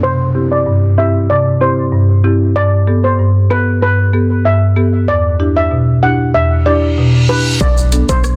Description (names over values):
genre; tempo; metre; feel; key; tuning
dancehall; 95 BPM; 4/4; straight; unclear; A4 = 440 Hz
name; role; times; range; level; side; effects
steel pan; melody; 0.0-8.2 s; B4 to F#5; -19 LUFS; equal; low-pass filter, digital delay
marimba with medium mallets; accompaniment; 0.0-8.1 s; E2 to A4; -14 LUFS; equal; low-pass filter
downlifter, reverse cymbal and impact; sound effects; 0.0-8.4 s; none; -27 LUFS; equal; none
warm sub bass; bass; 7.6-8.4 s; B1; -16 LUFS; equal; none
afro-pop drum kit; drums; 7.6-8.4 s; hi-hat, kick drum, rim click, shaker; -18 LUFS; equal; overdrive
bongos; percussion; 7.6-7.8 s; none; -28 LUFS; equal; none
room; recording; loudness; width
light reverb; dense, heavily limited modern master; -13 LUFS; mono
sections
0.0-7.6 A section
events
filter sweep 0.0-7.6; reverse cymbal 6.7-7.6; impact 7.6-8.4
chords
0.0 C; 2.6 Gadd9; 5.1 Em7; 7.6 Bm7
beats
| 0.03 0.66 1.29 1.93 | 2.56 3.19 3.82 4.45 | 5.08 5.71 6.35 6.98 | 7.61 8.24